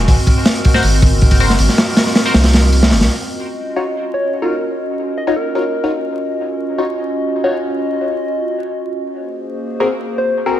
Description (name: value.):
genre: drum and bass, jungle.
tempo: 159 BPM.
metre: 4/4.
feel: straight.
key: Eb dorian.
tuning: A4 = 440 Hz.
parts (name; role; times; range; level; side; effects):
soft struck synth lead; melody; 0.0-0.1, 4.1-6.1, 10.2-10.6 s; Bb4 to Ab5; -24 LUFS; left 2 dB; chorus, dub echo.
warbly tape-like pad; sustained chords; 0.0-10.6 s; Ab3 to Eb5; -20 LUFS; equal; chorus, built-in reverb.
soft dub sub bass; bass; 0.0-3.1 s; Gb1 to C2; -14 LUFS; equal; none.
crunchy breakbeat drum kit; drums; 0.1-3.1 s; hi-hat, kick drum, snare drum; -12 LUFS; equal; none.
band-passed chord stab; stabs; 0.7-10.6 s; C4 to Db5; -21 LUFS; left 2 dB; phaser, dub echo.
room: light reverb, small room ambience.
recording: vinyl crackle.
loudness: -13 LUFS.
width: side -12 dB against mid.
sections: 0.0-3.1 A section; 3.1-10.6 B section.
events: drop 0.0-3.1.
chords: 0.0 Ab9; 3.1 Ebm9; 9.1 Ab9.